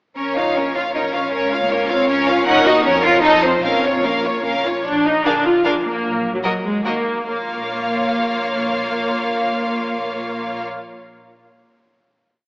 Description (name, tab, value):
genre	quick classical-period movement for string orchestra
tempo	133-159 BPM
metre	3/4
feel	rubato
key	Bb minor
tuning	A4 = 440 Hz
part	rich symphonic violin section	melody	0.2-10.6 s	Bb4 to Gb5	-22 LUFS	equal	none
part	warm symphonic violin section	second line	0.2-10.6 s	F4 to Db5	-22 LUFS	equal	none
part	warm symphonic viola section	accompaniment	0.2-10.6 s	Gb3 to Gb4	-20 LUFS	equal	none
part	warm symphonic cello section	bass	0.2-10.6 s	Bb2 to F4	-22 LUFS	equal	none
part	warm symphonic double bass section	bass	0.2-10.6 s	Bb1 to F2	-34 LUFS	equal	none
room	wet concert hall reverb, RT60 2.0 s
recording	AM radio sound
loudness	-16 LUFS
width	side -31 dB against mid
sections	0.2-4.9 A section; 4.9-7.3 coda; 7.3-9.9 final chord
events	slowing down 4.3-7.3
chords	0.2 Bbm; 1.3 Bbm/Db; 2.5 Ebm; 2.8 Bbm/F; 3.2 F7; 3.6 Bbm; 4.9 Bb; 6.0 Ebm/Bb; 7.3 Bbm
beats	| 0.17 0.56 0.94 | 1.33 1.71 2.09 | 2.47 2.85 3.23 | 3.64 4.04 4.46 | 4.86 5.26 5.65 | 6.04 6.43 6.85 | 7.29 7.72 8.15 | 8.58 9.01 9.44